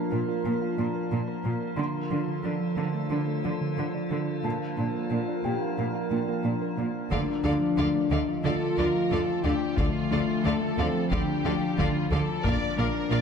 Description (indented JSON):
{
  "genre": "cinematic, hybrid orchestral and electronic film score",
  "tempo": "90 BPM",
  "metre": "4/4",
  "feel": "straight",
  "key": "D minor from 7.1 s",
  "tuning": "A4 = 441 Hz",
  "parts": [
    { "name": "metallic inharmonic drone", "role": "sustained chords", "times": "0.0-13.2 s", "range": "D3 to D5", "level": "-31 LUFS", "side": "equal", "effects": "chorus, built-in reverb" },
    { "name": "harp-like synth pluck", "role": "arpeggios", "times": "0.0-13.2 s", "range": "D3 to Bb4", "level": "-33 LUFS", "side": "right 4 dB", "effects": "chorus, digital delay" },
    { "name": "felt-muted upright piano", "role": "texture", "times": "0.0-13.2 s", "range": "G4 to C6", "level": "-41 LUFS", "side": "left 1 dB", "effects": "digital delay" },
    { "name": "rich symphonic cello section", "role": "bass", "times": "0.1-13.2 s", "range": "Bb2 to D3", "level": "-32 LUFS", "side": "right 2 dB", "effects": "none" },
    { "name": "rich chamber violin section", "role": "melody", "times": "7.1-13.2 s", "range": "F5", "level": "-40 LUFS", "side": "left 4 dB", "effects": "none" },
    { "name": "rich symphonic viola section", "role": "accompaniment", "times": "7.1-13.2 s", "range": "F4 to D5", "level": "-35 LUFS", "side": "equal", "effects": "none" },
    { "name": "dark French horn section", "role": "sustained chords", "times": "7.1-13.2 s", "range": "A3 to F4", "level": "-28 LUFS", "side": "left 5 dB", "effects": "none" },
    { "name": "rich symphonic double bass section", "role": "bass", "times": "7.1-13.2 s", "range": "Bb1 to D2", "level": "-32 LUFS", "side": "right 2 dB", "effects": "none" },
    { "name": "taiko ensemble", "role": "drums", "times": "7.1-13.1 s", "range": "none", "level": "-32 LUFS", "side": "left 1 dB", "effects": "none" },
    { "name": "warm symphonic violin section", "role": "second line", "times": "8.4-13.2 s", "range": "F4 to D5", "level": "-34 LUFS", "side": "left 1 dB", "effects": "none" }
  ],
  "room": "moderate scoring stage reverb, RT60 1.6 s",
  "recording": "none",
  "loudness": "-25 LUFS",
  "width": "side -6 dB against mid",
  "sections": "0.0-7.1 A section; 7.1-13.2 B section",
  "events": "build-up 0.0-7.1",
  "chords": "0.0 Bb; 1.8 Dm; 4.4 Bb; 7.1 Dm; 12.4 Bb"
}